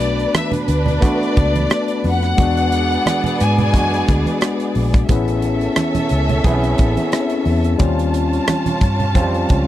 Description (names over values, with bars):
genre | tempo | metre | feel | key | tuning
lush 1970s-style soul | 88 BPM | 4/4 | swing 54% on 16ths | B dorian | A4 = 441 Hz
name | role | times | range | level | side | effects
rich studio violin section | melody | 0.0-4.2 s | D5 to G#5 | -21 LUFS | left 2 dB | none
warm symphonic violin section | second line | 0.0-9.7 s | B3 to A5 | -23 LUFS | right 1 dB | none
overdriven tine electric piano | accompaniment | 0.0-9.7 s | E#3 to G#4 | -20 LUFS | moving between left 6 dB and right 1 dB | auto-pan
vintage muted fingered electric bass | bass | 0.0-9.7 s | A1 to G#2 | -19 LUFS | equal | none
modern studio drum kit | drums | 0.0-9.7 s | hi-hat, kick drum, rim click | -18 LUFS | equal | none
congas | percussion | 0.3-9.7 s | none | -24 LUFS | right 4 dB | none
room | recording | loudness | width
little or no reverb | dry, close 1970s-style studio recording | -14 LUFS | side -13 dB against mid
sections
0.0-9.7 A section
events
none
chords
0.0 Bm7; 2.4 E9; 5.1 Amaj7; 7.8 D#13